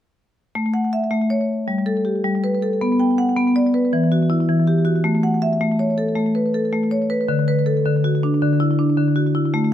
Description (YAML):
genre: southern african traditional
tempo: 107 BPM (dotted quarters)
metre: 12/8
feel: straight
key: A mixolydian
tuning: A4 = 440 Hz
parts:
  - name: marimba with medium hard mallets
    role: arpeggios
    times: 0.6-9.7 s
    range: D3 to G5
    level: -17 LUFS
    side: equal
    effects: slapback echo
room: moderate studio reverb, RT60 0.6 s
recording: none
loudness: -17 LUFS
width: side -11 dB against mid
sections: 0.6-9.7 A section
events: none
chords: 0.6 A; 1.7 G; 2.8 Bm; 3.9 Em; 5.0 A; 7.3 D